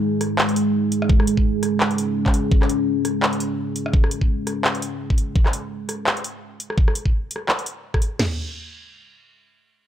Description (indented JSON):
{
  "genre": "half-time drum and bass",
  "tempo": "169 BPM",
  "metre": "4/4",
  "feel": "swing 57% on 16ths, half-time",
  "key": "unclear",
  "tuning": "A4 = 442 Hz",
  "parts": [
    { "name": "deep dark ambient pad", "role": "sustained chords", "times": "0.0-5.3 s", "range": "G#3 to G#4", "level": "-22 LUFS", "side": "equal", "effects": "chorus, built-in reverb, sidechain pumping" },
    { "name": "drum and bass drum kit", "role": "drums", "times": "0.2-8.1 s", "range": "handclaps, hi-hat, rim click", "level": "-23 LUFS", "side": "equal", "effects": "none" },
    { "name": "drum and bass drum kit", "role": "drums", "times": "1.1-8.3 s", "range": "crash cymbal, kick drum, snare drum, toms", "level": "-18 LUFS", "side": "equal", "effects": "none" }
  ],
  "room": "moderate lush hall reverb, RT60 1.7 s",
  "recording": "dry, gritty hardware recording",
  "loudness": "-19 LUFS",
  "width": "side -10 dB against mid",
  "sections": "0.0-8.2 A section; 8.2-9.9 B section",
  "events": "none",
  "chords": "0.0 G#5; 8.2 N.C."
}